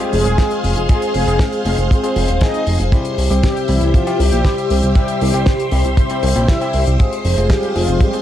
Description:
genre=italo disco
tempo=118 BPM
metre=4/4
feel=straight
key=unclear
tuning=A4 = 444 Hz
part: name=mellow synth brass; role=melody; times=0.0-8.1 s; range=E3 to E5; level=-22 LUFS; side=left 1 dB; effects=chorus, tape echo
part: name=phased string machine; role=sustained chords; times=0.0-8.2 s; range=G4 to C6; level=-22 LUFS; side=equal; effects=ensemble chorus, phaser
part: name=bell-like tine electric piano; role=stabs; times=0.0-8.2 s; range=C3 to Ab4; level=-22 LUFS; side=left 2 dB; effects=phaser
part: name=damped 70s drum kit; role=drums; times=0.0-8.2 s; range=hi-hat, snare drum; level=-26 LUFS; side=left 2 dB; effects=none
part: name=chorused synth bass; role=bass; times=0.1-8.0 s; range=Eb1 to C2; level=-16 LUFS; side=equal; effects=none
part: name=kick drum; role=drums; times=0.4-8.1 s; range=none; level=-13 LUFS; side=equal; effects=none
room=small room ambience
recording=dry, gritty hardware recording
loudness=-13 LUFS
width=side -12 dB against mid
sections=0.0-8.2 A section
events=none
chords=0.0 Fm; 2.9 C; 7.0 Fm

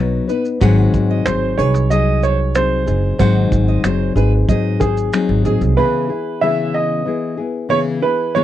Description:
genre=acoustic pop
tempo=93 BPM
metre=4/4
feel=straight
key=C# minor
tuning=A4 = 440 Hz
part: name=nylon-string guitar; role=accompaniment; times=0.0-8.4 s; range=G#2 to B4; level=-18 LUFS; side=left 5 dB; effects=none
part: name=upright bass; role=bass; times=0.0-5.7 s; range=F#1 to G#2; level=-17 LUFS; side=right 1 dB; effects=none
part: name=fingerpicked steel-string acoustic guitar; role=arpeggios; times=0.3-5.6 s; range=G#4 to F#5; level=-28 LUFS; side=right 11 dB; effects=none
part: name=cloth-damped thuddy drum kit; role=drums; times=0.3-5.8 s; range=finger snaps, kick drum, shaker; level=-20 LUFS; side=right 1 dB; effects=none
part: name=dark upright piano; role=melody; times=1.3-8.4 s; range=G#4 to E5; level=-19 LUFS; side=right 3 dB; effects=none
room=little or no reverb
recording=dry, close 1970s-style studio recording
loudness=-14 LUFS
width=side -12 dB against mid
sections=0.0-5.8 A section; 5.8-8.4 B section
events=none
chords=0.0 B; 0.6 G#7; 5.8 C#m7

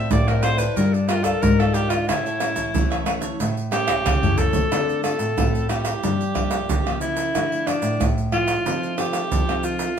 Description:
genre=samba and choro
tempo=91 BPM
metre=4/4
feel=straight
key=D minor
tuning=A4 = 440 Hz
part: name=clear alto saxophone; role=melody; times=0.0-10.0 s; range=D4 to E5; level=-24 LUFS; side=equal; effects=none
part: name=cavaquinho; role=accompaniment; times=0.0-4.7 s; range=E4 to F5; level=-31 LUFS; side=right 3 dB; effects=none
part: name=nylon-string guitar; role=accompaniment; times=0.0-9.9 s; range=G2 to Bb4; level=-28 LUFS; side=left 4 dB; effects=none
part: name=nylon-string guitar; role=bass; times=0.0-9.9 s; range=G2 to F3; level=-25 LUFS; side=left 1 dB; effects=none
part: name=egg shaker, surdo, pandeiro and tamborim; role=percussion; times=0.1-10.0 s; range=none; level=-24 LUFS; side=right 2 dB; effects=none
room=wet studio reverb, RT60 0.7 s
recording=band playing live in one room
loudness=-19 LUFS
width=side -8 dB against mid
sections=0.0-4.7 A section; 4.7-10.0 B section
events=alto saxophone solo 0.0-4.7; drum fill 3.9-4.7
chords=0.0 Dm7; 0.8 Gm7; 2.1 A; 4.7 Dm7; 6.0 Gm7; 7.3 Dmadd9; 8.7 F7

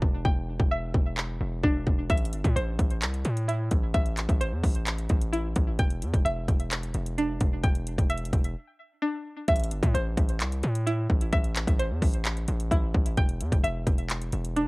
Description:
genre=hip hop, trap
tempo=130 BPM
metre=4/4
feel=half-time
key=A minor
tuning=A4 = 445 Hz
part: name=string-like resonator pluck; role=arpeggios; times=0.0-14.7 s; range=D4 to G5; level=-31 LUFS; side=equal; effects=chorus, phaser, low-pass filter, tape echo
part: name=distorted 808-style bass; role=bass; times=0.0-14.7 s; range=E1 to A2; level=-29 LUFS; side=equal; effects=distortion
part: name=trap drum kit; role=drums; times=0.0-14.7 s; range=handclaps, hi-hat, kick drum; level=-25 LUFS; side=equal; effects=cassette tape
room=little or no reverb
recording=home recording on cassette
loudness=-24 LUFS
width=side -24 dB against mid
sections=0.0-9.5 A section; 9.5-14.7 B section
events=break 0.0-2.1, 8.6-9.5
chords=0.0 Em7; 2.1 Am; 5.8 Em7; 9.5 Am; 13.2 Em

